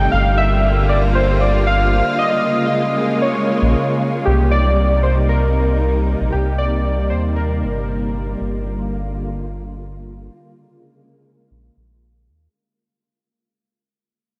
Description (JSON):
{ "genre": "IDM", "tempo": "116 BPM", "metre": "4/4", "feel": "straight", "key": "unclear", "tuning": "A4 = 440 Hz", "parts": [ { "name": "warbly lo-fi synth keys", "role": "melody", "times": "0.0-8.1 s", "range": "G4 to G5", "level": "-22 LUFS", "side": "equal", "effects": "chorus, delay" }, { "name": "soft string machine", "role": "sustained chords", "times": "0.0-12.5 s", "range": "C3 to F4", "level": "-23 LUFS", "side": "equal", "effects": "ensemble chorus" }, { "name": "round analog bass", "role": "bass", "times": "0.0-12.5 s", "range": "G1 to Eb2", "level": "-21 LUFS", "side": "equal", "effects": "none" } ], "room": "wet huge ambient reverb, RT60 7.9 s", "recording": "dreamy mix soaked in reverb", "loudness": "-17 LUFS", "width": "mono", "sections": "0.0-4.3 A section; 4.3-12.5 B section", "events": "fade-out 4.3-12.5; filter sweep on string machine 4.3-12.5", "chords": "0.1 Gm7; 2.2 Bbm7; 4.3 Cm7; 8.4 Gm7; 10.5 Bbm7" }